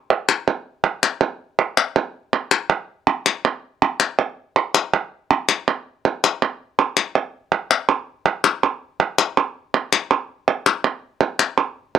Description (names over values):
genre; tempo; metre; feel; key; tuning
flamenco; 162 BPM; 4/4; straight; none; none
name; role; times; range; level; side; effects
palmas hand claps; percussion; 0.1-12.0 s; none; -17 LUFS; right 2 dB; none
room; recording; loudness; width
light reverb; dry, close 1970s-style studio recording; -19 LUFS; side -9 dB against mid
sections
0.0-11.8 A section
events
none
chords
none